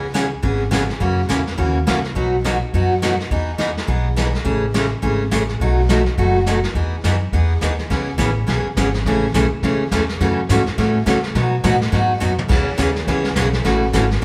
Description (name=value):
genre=country, western swing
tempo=209 BPM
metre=4/4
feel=swing 60% on 8ths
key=unclear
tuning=A4 = 438 Hz
part: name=picked steel-string acoustic guitar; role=accompaniment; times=0.0-14.2 s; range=B2 to G#4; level=-22 LUFS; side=equal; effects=none
part: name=upright bass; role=bass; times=0.0-14.2 s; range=F#1 to C#3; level=-23 LUFS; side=equal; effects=none
part: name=vintage brush drum kit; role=drums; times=0.1-14.2 s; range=brushed snare drum, crash cymbal, hi-hat, kick drum, snare drum, toms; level=-26 LUFS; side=equal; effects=none
room=wet large studio reverb, RT60 1.2 s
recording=band playing live in one room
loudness=-18 LUFS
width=mono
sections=0.0-7.9 A section; 7.9-14.2 B section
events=drum fill 12.2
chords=0.0 C#m7; 1.0 F#7; 2.2 B; 3.3 Emaj7; 4.5 Amaj7; 5.6 B7; 6.8 Emaj7; 7.9 C#m7; 9.1 Amaj7; 10.2 F#m7; 11.4 B; 12.5 C#m7; 13.6 A6